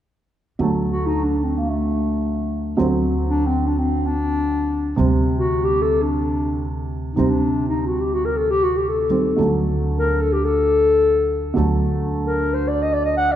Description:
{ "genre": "klezmer", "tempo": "free time", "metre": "none", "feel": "none", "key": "unclear", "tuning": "A4 = 438 Hz", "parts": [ { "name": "dark upright piano", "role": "accompaniment", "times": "0.6-13.4 s", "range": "C3 to C4", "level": "-22 LUFS", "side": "right 2 dB", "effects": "none" }, { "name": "upright bass", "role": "bass", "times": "0.6-13.4 s", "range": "D2", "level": "-25 LUFS", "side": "right 1 dB", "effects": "none" }, { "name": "dark clarinet", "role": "melody", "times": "0.9-13.4 s", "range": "A3 to F#5", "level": "-20 LUFS", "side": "left 2 dB", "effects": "none" } ], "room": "moderate concert hall reverb, RT60 2.4 s", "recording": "recorded in a church or concert hall", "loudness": "-18 LUFS", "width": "side -11 dB against mid", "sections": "0.6-13.4 A section", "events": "none", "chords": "0.6 D; 5.0 C5/D; 9.4 D", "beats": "free time" }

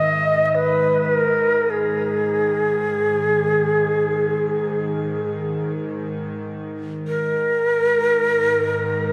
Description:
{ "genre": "world meditative, free-time meditation music", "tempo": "free time", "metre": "none", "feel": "none", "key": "unclear", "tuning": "A4 = 442 Hz", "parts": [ { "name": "breathy Native American-style cedar flute", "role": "melody", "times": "0.0-9.1 s", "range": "G#4 to D#5", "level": "-21 LUFS", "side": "equal", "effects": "shimmer reverb, analog delay" }, { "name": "bowed-like drone", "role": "drone", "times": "0.0-9.1 s", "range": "G#2 to D#3", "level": "-29 LUFS", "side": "equal", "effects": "built-in reverb" } ], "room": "wet echo chamber reverb, RT60 1.9 s, small room ambience", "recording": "echo-heavy mix", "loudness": "-20 LUFS", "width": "mono", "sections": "0.0-6.3 A section; 6.3-9.1 A section", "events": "none", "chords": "none", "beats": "free time" }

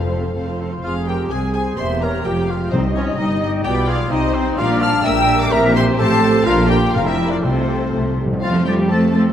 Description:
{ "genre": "quick classical-period movement for symphony orchestra", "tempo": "127 BPM", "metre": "2/4", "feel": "rubato", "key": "F minor, F major from 4.6 s", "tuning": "A4 = 440 Hz", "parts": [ { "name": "rich chamber violin section", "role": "melody", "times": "0.0-9.2 s", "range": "C5 to F6", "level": "-27 LUFS", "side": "left 5 dB", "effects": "none" }, { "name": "rich symphonic violin section", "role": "second line", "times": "0.0-9.3 s", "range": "A3 to F6", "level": "-29 LUFS", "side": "left 4 dB", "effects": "none" }, { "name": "dark bassoon", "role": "accompaniment", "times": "0.0-0.3, 8.4-9.2 s", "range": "F3 to C4", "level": "-32 LUFS", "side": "equal", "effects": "none" }, { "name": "rich chamber viola section", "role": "accompaniment", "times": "0.0-9.3 s", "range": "F3 to Eb5", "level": "-26 LUFS", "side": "right 1 dB", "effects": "none" }, { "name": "mellow French horn section", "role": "sustained chords", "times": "0.0-9.3 s", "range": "E3 to C5", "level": "-24 LUFS", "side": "left 4 dB", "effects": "none" }, { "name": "rich chamber double bass section", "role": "bass", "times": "0.0-9.3 s", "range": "E1 to F2", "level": "-23 LUFS", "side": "right 2 dB", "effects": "none" }, { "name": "warm chamber cello section", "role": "bass", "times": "0.0-9.2 s", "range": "C2 to A3", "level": "-22 LUFS", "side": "right 1 dB", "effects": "none" }, { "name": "timpani", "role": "percussion", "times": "0.0-0.6, 2.7-3.4, 7.4-8.4 s", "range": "F2 to C3", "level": "-24 LUFS", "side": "left 1 dB", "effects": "none" }, { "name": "dark clarinet", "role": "second line", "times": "0.8-9.3 s", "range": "C4 to F5", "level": "-26 LUFS", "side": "left 1 dB", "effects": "none" }, { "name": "mellow cor anglais", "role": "second line", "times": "0.8-9.3 s", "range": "C4 to F5", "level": "-25 LUFS", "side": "equal", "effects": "none" }, { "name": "mellow flute section", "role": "second line", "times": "0.8-9.2 s", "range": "Eb4 to A6", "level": "-24 LUFS", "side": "right 1 dB", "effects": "none" } ], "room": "moderate scoring stage reverb, RT60 1.8 s", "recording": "dark, warm production", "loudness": "-15 LUFS", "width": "side -9 dB against mid", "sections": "0.8-8.4 A section", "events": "timpani fill 7.9-8.4", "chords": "0.0 F; 0.8 Fm; 1.8 C7/E; 2.3 Fm; 2.7 Cm; 3.7 G7/B; 4.1 Cm; 4.6 Gm/Bb; 5.5 C7/Bb; 6.0 F/A; 6.5 Bb; 7.4 F/C; 7.9 C5; 8.4 F", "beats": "0.35 | 0.84 1.32 | 1.79 2.26 | 2.73 3.19 | 3.65 4.12 | 4.58 5.05 | 5.52 5.99 | 6.47 6.94 | 7.44 7.94 | 8.44 8.91" }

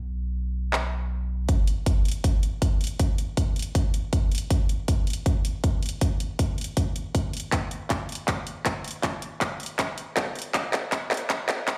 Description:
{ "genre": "future bass", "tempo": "159 BPM", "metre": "4/4", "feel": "half-time", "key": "unclear", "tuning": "A4 = 438 Hz", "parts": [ { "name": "saturated sub bass", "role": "bass", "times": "0.0-1.5 s", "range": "B1", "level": "-30 LUFS", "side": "equal", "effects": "sidechain pumping" }, { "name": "big-room dance drum kit", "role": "drums", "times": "0.7-11.8 s", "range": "handclaps, hi-hat", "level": "-31 LUFS", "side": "equal", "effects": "none" }, { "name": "electronic kick drum", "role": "drums", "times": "1.5-11.8 s", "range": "none", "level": "-27 LUFS", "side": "equal", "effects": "none" } ], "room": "light reverb, digital ambience", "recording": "played on a big sound system in a bare room, large studio reverb, high-pass filter", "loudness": "-27 LUFS", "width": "mono", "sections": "0.0-1.5 A section; 1.5-11.8 B section", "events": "build-up 1.5-11.8; filter sweep 1.5-11.8; drum fill 7.5-11.8", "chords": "none", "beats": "0.35 0.73 1.11 | 1.49 1.86 2.24 2.62 | 3.00 3.37 3.75 4.13 | 4.50 4.88 5.26 5.64 | 6.01 6.39 6.77 7.15 | 7.52 7.90 8.28 8.66 | 9.03 9.41 9.79 10.17 | 10.54 10.92 11.30 11.68" }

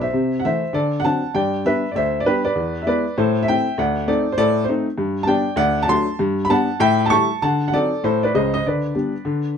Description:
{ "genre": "jazz, stride piano", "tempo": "198 BPM", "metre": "4/4", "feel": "swing 60% on 8ths", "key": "G major", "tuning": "A4 = 438 Hz", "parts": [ { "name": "warm upright piano", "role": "solo", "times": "0.0-9.6 s", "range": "C#2 to C#6", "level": "-17 LUFS", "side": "left 1 dB", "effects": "none" } ], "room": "light reverb", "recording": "close, detailed microphones", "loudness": "-17 LUFS", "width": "side -7 dB against mid", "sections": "0.1-9.6 A section", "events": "none", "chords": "0.1 Am/C; 0.7 D7; 1.3 G; 2.6 E7; 3.2 Am; 3.8 D7b9; 5.0 G; 5.6 D7; 6.2 G; 6.8 A7; 7.4 D7b9; 8.6 G/D", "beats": "| 0.13 0.43 0.74 1.04 | 1.35 1.65 1.95 2.26 | 2.56 2.86 3.17 3.47 | 3.77 4.08 4.38 4.69 | 4.99 5.29 5.60 5.90 | 6.21 6.51 6.81 7.12 | 7.42 7.72 8.03 8.33 | 8.64 8.94 9.24 9.55" }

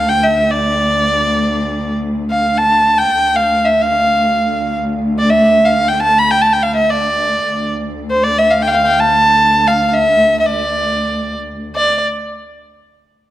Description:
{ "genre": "Turkish makam ensemble", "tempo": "free time", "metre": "none", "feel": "none", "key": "D makam huseyni", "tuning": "A4 = 440 Hz", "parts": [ { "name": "warm violin", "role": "melody", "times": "0.0-12.0 s", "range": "C5 to B5-29c", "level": "-12 LUFS", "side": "equal", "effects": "none" }, { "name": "warm symphonic cello section", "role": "drone", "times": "0.0-11.8 s", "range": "D2", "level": "-19 LUFS", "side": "equal", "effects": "none" } ], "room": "moderate scoring stage reverb, RT60 1.8 s", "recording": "none", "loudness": "-12 LUFS", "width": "side -14 dB against mid", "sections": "0.0-11.8 A section; 11.8-13.3 B section", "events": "none", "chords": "none", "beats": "free time" }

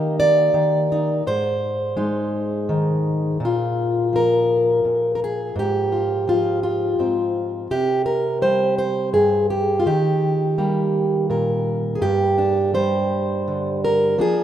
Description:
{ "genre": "folk, solo fingerstyle acoustic guitar", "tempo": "56 BPM (dotted quarters)", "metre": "6/8", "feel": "straight", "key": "Bb mixolydian", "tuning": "A4 = 440 Hz", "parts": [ { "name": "fingerpicked plugged-in steel-string acoustic guitar", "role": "solo", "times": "0.0-14.4 s", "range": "G2 to Eb5", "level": "-18 LUFS", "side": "equal", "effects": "none" } ], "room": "moderate plate reverb, RT60 3.6 s", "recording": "rough home demo mix", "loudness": "-18 LUFS", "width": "side -10 dB against mid", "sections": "0.0-3.4 A section; 3.4-14.4 B section", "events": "none", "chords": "0.0 Eb; 1.3 Ab; 3.4 Bb5; 5.6 Fm/Ab; 7.7 C5; 9.9 Eb; 12.0 Gm", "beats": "0.20 | 1.26 2.33 | 3.41 4.49 | 5.57 6.64 | 7.71 8.79 | 9.86 10.95 | 12.03 13.12 | 14.20" }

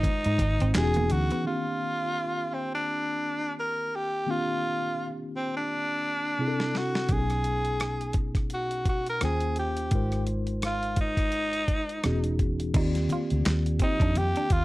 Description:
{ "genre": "R&B, neo-soul", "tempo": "85 BPM", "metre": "4/4", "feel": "swing 58% on 16ths", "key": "Eb major", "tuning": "A4 = 441 Hz", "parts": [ { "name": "raspy tenor saxophone", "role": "melody", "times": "0.0-14.6 s", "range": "C4 to Bb4", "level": "-29 LUFS", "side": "equal", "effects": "plate reverb" }, { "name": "mellow tine electric piano", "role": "accompaniment", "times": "0.0-14.6 s", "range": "B2 to G5", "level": "-32 LUFS", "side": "left 1 dB", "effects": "medium stereo tremolo, plate reverb" }, { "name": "dusty soul sampler-style drum kit", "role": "drums", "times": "0.0-1.4, 6.6-14.6 s", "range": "crash cymbal, handclaps, hi-hat, kick drum, rim click, snare drum", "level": "-28 LUFS", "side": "equal", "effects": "none" }, { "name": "congas", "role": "percussion", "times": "0.0-1.3, 12.8-14.3 s", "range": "none", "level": "-35 LUFS", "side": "left 2 dB", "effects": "none" }, { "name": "semi-hollow electric guitar", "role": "second line", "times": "0.3-1.4, 12.8-14.5 s", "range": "Bb3 to F4", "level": "-36 LUFS", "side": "right 4 dB", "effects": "plate reverb" }, { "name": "vintage muted fingered electric bass", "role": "bass", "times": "0.3-1.3, 7.1-14.6 s", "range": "E1 to Ab2", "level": "-28 LUFS", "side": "equal", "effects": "none" } ], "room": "light reverb", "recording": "none", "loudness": "-25 LUFS", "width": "side -19 dB against mid", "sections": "0.0-1.4 A section; 1.4-12.7 B section; 12.7-14.6 C section", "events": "drum fill 5.7-7.1", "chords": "0.0 Ab69; 0.7 Emaj13; 1.4 Ebmaj13; 6.4 C69; 7.1 B69; 9.2 Eb13; 9.9 Ab69; 12.0 Emaj13; 12.7 Ebmaj13", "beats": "0.04 0.74 | 1.45 2.15 2.86 3.57 | 4.27 4.98 5.68 6.39 | 7.10 7.80 8.51 9.21 | 9.92 10.63 11.33 12.04 | 12.74 13.45 14.15" }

